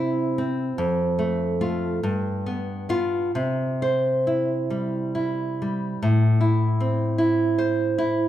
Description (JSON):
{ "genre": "romantic piece for solo classical guitar", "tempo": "44-51 BPM (dotted quarters)", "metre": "6/8", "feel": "rubato", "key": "C major", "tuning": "A4 = 441 Hz", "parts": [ { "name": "nylon-string guitar", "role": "solo", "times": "0.0-8.3 s", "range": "F2 to C5", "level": "-21 LUFS", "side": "equal", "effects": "none" } ], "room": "moderate recital hall reverb, RT60 1.4 s", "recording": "recorded in a church or concert hall", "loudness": "-21 LUFS", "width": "side -12 dB against mid", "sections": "0.0-6.0 A section; 6.0-8.3 B section", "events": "none", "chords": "0.0 C; 0.8 F; 2.0 G7; 3.3 C; 6.0 Am" }